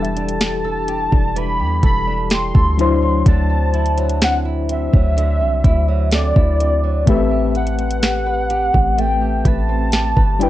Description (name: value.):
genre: contemporary R&B.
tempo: 63 BPM.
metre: 4/4.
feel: straight.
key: unclear.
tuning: A4 = 440 Hz.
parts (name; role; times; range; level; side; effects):
warm velvety synth lead; melody; 0.0-10.5 s; D5 to C6; -21 LUFS; equal; chorus, phaser, cassette tape, plate reverb.
mellow FM electric piano; accompaniment; 0.0-10.5 s; F#3 to C5; -23 LUFS; left 8 dB; chorus, tremolo, cassette tape.
flamenco guitar; arpeggios; 0.0-10.5 s; D3 to B4; -26 LUFS; right 9 dB; cassette tape.
warm 808-style bass; bass; 0.0-10.5 s; E1 to E2; -19 LUFS; equal; none.
smooth R&B drum kit; drums; 0.0-10.5 s; hi-hat, kick drum, snare drum; -16 LUFS; equal; cassette tape.
soft round pluck; texture; 0.0-7.5 s; B3 to E5; -33 LUFS; right 1 dB; chorus, cassette tape, analog delay.
room: light reverb.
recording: home recording on cassette.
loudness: -14 LUFS.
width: side -14 dB against mid.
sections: 0.0-10.5 A section.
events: none.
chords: 0.0 Em7; 2.8 D9; 7.1 Am9.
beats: 0.41 1.36 2.31 | 3.26 4.21 5.17 6.12 | 7.07 8.02 8.98 9.93.